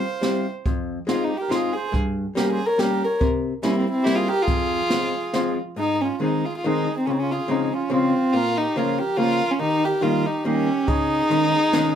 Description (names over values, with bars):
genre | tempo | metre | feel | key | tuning
musette waltz | 141 BPM | 3/4 | swing 54% on 8ths | F minor, Ab major from 5.8 s | A4 = 440 Hz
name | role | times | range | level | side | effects
warm violin | melody | 0.0-12.0 s | C4 to C5 | -23 LUFS | equal | none
melodica | second line | 0.0-12.0 s | Eb4 to F5 | -30 LUFS | right 6 dB | none
archtop guitar, miked and amplified | accompaniment | 0.0-12.0 s | F2 to G4 | -24 LUFS | left 1 dB | none
jazz brush drum kit | drums | 0.2-5.4, 10.9-11.8 s | hi-hat, kick drum, snare drum | -26 LUFS | right 1 dB | none
room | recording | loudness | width
moderate small room reverb, RT60 0.5 s | none | -20 LUFS | side -9 dB against mid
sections
0.0-5.8 A section; 5.8-12.0 B section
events
none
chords
0.2 C; 0.7 Fm7; 1.9 Gdim; 3.2 C7; 4.5 Fm; 5.8 Ab; 7.1 Dbmaj7; 8.3 Bbm; 9.6 Eb; 10.9 Dbsus2